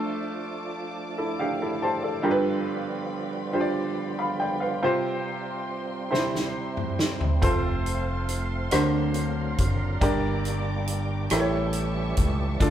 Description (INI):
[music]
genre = slow gospel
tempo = 46 BPM (dotted quarters)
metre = 6/8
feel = straight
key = unclear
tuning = A4 = 442 Hz
[part]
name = clear upright piano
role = accompaniment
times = 0.0-12.7 s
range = G2 to B5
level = -27 LUFS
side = right 1 dB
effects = none
[part]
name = dark studio string section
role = sustained chords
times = 0.0-12.7 s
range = F4 to D6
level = -38 LUFS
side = equal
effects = none
[part]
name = tonewheel organ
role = sustained chords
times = 0.0-12.7 s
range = D3 to F5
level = -34 LUFS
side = right 2 dB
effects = slow rotary speaker, overdrive, chorus vibrato
[part]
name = natural country drum kit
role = drums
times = 6.1-12.7 s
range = hi-hat, kick drum, rim click, snare drum, toms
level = -26 LUFS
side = equal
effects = none
[part]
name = fretless electric bass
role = bass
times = 7.4-12.7 s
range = F1 to D2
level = -27 LUFS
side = equal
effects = none
[sound]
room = moderate large studio reverb, RT60 1.2 s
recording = band playing live in one room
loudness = -24 LUFS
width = side -10 dB against mid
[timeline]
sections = 0.0-12.7 A section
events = upright piano fill 1.0-2.3; drum fill 6.1-7.4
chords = 0.0 Dm/F; 2.3 G7; 4.8 Csus4; 6.1 C; 7.4 F; 8.7 D7alt; 10.0 Gm; 11.3 A7